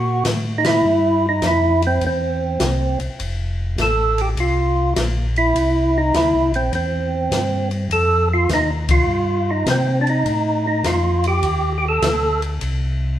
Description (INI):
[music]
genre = soul jazz organ trio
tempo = 102 BPM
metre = 4/4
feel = swing 68% on 8ths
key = unclear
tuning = A4 = 440 Hz
[part]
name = percussive tonewheel organ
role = melody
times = 0.0-12.4 s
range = C4 to A4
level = -18 LUFS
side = right 1 dB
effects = slow rotary speaker, overdrive
[part]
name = mellow tonewheel organ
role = bass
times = 0.0-13.2 s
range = F1 to C3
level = -21 LUFS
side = equal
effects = slow rotary speaker
[part]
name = open jazz drum kit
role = drums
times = 0.2-12.8 s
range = hi-hat, kick drum, ride cymbal, snare drum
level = -26 LUFS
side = left 2 dB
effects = none
[sound]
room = wet stone room reverb, RT60 1.3 s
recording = band playing live in one room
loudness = -16 LUFS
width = side -12 dB against mid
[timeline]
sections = 0.0-13.2 A section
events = band accent 0.5, 8.8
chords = 0.0 C7; 3.2 F; 5.6 C9; 7.9 F9; 12.6 N.C.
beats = 0.25 | 0.84 1.43 2.02 2.61 | 3.20 3.79 4.37 4.96 | 5.55 6.14 6.73 7.32 | 7.91 8.49 9.08 9.67 | 10.26 10.85 11.44 12.03 | 12.62